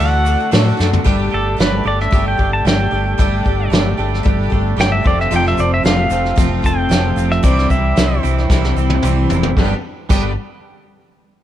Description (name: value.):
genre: folk rock and heartland rock.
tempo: 113 BPM.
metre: 4/4.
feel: straight.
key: unclear.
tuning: A4 = 441 Hz.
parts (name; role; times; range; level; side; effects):
pedal steel guitar; melody; 0.0-8.2 s; A4 to A5; -20 LUFS; equal; tape echo.
picked twelve-string acoustic guitar; accompaniment; 0.0-10.3 s; F2 to G4; -22 LUFS; left 4 dB; none.
mellow tonewheel organ; sustained chords; 0.0-9.8 s; D4 to A5; -30 LUFS; equal; none.
twelve-string electric guitar; riff; 0.0-10.3 s; F2 to G4; -22 LUFS; right 7 dB; spring reverb.
fingered electric bass; bass; 0.0-10.3 s; F1 to A2; -18 LUFS; equal; none.
soft brush drum kit; drums; 0.0-10.2 s; crash cymbal, hi-hat, kick drum, snare drum, toms; -17 LUFS; equal; none.
tube shaker; percussion; 0.3-1.0, 5.3-10.4 s; none; -39 LUFS; left 10 dB; none.
room: little or no reverb.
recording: worn, warbling old tape, cassette tape, warbly pitch drift.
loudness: -13 LUFS.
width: side -12 dB against mid.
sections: 0.0-1.1 A section; 1.1-9.6 B section; 9.6-11.4 C section.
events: drum fill 0.8, 8.5-9.6; pedal steel guitar solo 1.1-9.6.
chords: 0.0 D; 1.1 Gsus2; 5.1 F; 7.4 C; 9.6 G.